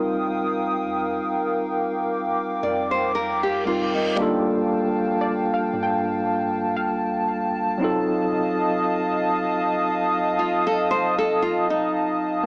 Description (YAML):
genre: contemporary R&B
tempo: 58 BPM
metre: 4/4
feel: swing 54% on 16ths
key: unclear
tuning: A4 = 440 Hz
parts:
  - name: tine electric piano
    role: accompaniment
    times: 0.0-12.5 s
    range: Gb3 to Bb4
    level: -24 LUFS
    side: equal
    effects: medium stereo tremolo, cassette tape
  - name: hollow soft pad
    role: sustained chords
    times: 0.0-12.4 s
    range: Bb4 to Eb6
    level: -23 LUFS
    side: equal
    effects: chorus, cassette tape
  - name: soft 808-style bass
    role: bass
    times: 0.0-12.4 s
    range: F1 to G2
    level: -44 LUFS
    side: equal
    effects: none
  - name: reverse cymbal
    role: sound effects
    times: 2.8-4.2 s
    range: none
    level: -33 LUFS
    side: right 1 dB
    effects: none
  - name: nylon-string guitar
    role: arpeggios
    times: 2.6-12.4 s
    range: Eb4 to D5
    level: -24 LUFS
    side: equal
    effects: cassette tape
  - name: glassy wavetable pluck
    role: texture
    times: 5.2-8.4 s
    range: D5 to G5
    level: -31 LUFS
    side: equal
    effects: chorus, cassette tape, analog delay
room: light reverb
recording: home recording on cassette, small speaker sound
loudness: -20 LUFS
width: side -31 dB against mid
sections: 0.0-4.2 A section; 4.2-12.5 B section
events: reverse cymbal 2.8-4.2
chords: 0.0 F9sus4; 4.2 Gm9; 7.8 F7b9